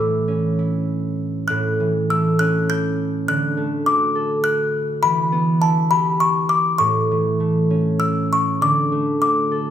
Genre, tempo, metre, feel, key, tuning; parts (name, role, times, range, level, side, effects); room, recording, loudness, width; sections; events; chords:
children's music, lullaby; 101 BPM; 3/4; rubato; D major; A4 = 439 Hz
music box; melody; 0.0-9.7 s; A5 to G6; -20 LUFS; left 2 dB
concert harp; accompaniment; 0.0-9.7 s; A2 to D5; -19 LUFS; right 1 dB
wet recital hall reverb, RT60 1.7 s; recorded in a church or concert hall; -17 LUFS; side -10 dB against mid
0.0-8.6 A section; 8.6-9.7 B section
0.0 A; 3.3 D; 5.0 Em; 6.8 A; 8.6 D